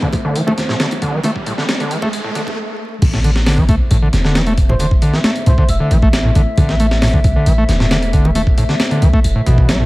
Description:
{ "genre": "breakbeat, breaks", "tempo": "135 BPM", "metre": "4/4", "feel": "straight", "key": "unclear", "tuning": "A4 = 440 Hz", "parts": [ { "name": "dark analog pad", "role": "sustained chords", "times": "0.0-9.9 s", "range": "A3 to E5", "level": "-25 LUFS", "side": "left 1 dB", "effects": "lush chorus, sidechain pumping" }, { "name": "overdriven acid bass", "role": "riff", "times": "0.0-9.9 s", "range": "A2 to A3", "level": "-17 LUFS", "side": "equal", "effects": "distortion" }, { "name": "breakbeat sampler-style drum kit", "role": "drums", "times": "0.0-9.8 s", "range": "crash cymbal, hi-hat, kick drum, snare drum", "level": "-16 LUFS", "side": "equal", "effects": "none" }, { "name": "riser", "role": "sound effects", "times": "0.1-2.6 s", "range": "none", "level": "-25 LUFS", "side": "right 1 dB", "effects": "none" }, { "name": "congas", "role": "percussion", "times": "0.1-9.6 s", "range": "none", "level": "-24 LUFS", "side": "right 1 dB", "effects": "none" }, { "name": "warm 808-style bass", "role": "bass", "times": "3.0-9.9 s", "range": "E1 to C2", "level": "-15 LUFS", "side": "equal", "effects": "none" }, { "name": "breathy flute-like synth lead", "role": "melody", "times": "4.7-5.9 s", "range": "C5 to E5", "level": "-26 LUFS", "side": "right 2 dB", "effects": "chorus, small speaker sound, vintage 12-bit sampler grit, dub echo" } ], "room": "light reverb", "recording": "vinyl crackle, high-pass filter", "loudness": "-12 LUFS", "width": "side -20 dB against mid", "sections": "0.0-3.0 A section; 3.0-9.9 B section", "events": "build-up 0.0-3.0; filter sweep on drum 0.0-3.0; filter sweep on acid bass 0.0-3.0; filter sweep 0.0-3.0; riser 0.1-2.6; stop 2.6-3.0; drop 3.0-9.9", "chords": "0.0 Am" }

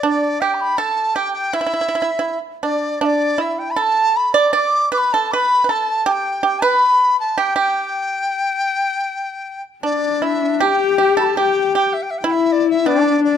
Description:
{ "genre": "chinese traditional, Chinese chamber ensemble", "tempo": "80 BPM", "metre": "2/4", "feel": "rubato", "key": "G gong mode", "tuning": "A4 = 440 Hz", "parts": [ { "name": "mellow dizi", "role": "melody", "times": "0.0-13.4 s", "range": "D5 to D6", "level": "-18 LUFS", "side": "left 1 dB", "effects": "none" }, { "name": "pipa", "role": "second line", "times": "0.0-13.4 s", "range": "D4 to D5", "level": "-19 LUFS", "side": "right 5 dB", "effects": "none" }, { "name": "warm horsehead fiddle", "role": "second line", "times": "9.8-13.4 s", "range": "D4 to G4", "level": "-17 LUFS", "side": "left 9 dB", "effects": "none" } ], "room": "moderate recital hall reverb, RT60 1.3 s", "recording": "close, detailed microphones", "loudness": "-15 LUFS", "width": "side -9 dB against mid", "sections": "0.0-10.6 A section; 10.6-13.4 B section", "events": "none", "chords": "none" }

